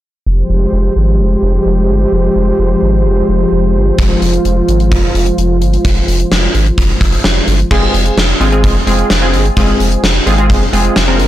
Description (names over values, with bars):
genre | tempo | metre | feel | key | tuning
synth-pop | 129 BPM | 4/4 | straight | F minor | A4 = 439 Hz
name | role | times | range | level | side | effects
brassy analog pad | sustained chords | 0.3-7.7 s | F3 to C5 | -14 LUFS | equal | chorus
round analog bass | bass | 0.3-11.3 s | F1 to Ab1 | -13 LUFS | equal | none
gated 80s drum kit | drums | 4.0-11.3 s | crash cymbal, hi-hat, kick drum, snare drum | -13 LUFS | equal | soft clipping on kick
funky polysynth comp | accompaniment | 7.7-11.3 s | Ab3 to Bb4 | -14 LUFS | equal | chorus
room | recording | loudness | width
light reverb, small room ambience | blown-out, overdriven recording, overdrive | -9 LUFS | side -13 dB against mid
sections
0.3-7.7 A section; 7.7-11.3 B section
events
none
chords
0.3 Fmadd9; 7.7 Fm